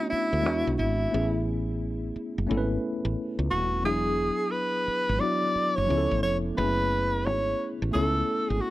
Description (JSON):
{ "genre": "R&B, neo-soul", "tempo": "88 BPM", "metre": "4/4", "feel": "swing 63% on 16ths", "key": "unclear", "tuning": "A4 = 440 Hz", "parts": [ { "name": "breathy tenor saxophone", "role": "melody", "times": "0.0-8.7 s", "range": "E4 to D5", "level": "-27 LUFS", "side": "equal", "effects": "none" }, { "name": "tine electric piano", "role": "accompaniment", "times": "0.0-8.7 s", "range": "E#3 to C#5", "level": "-30 LUFS", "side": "left 1 dB", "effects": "medium stereo tremolo" }, { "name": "woody fretless electric bass", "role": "bass", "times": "0.1-8.6 s", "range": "D#1 to E2", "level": "-29 LUFS", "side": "equal", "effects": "none" } ], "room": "light reverb", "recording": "none", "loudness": "-24 LUFS", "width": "side -16 dB against mid", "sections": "0.0-8.7 A section", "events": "none", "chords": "0.4 E7; 1.1 Amaj9; 3.8 E9; 5.9 C#7alt; 6.6 F#m11" }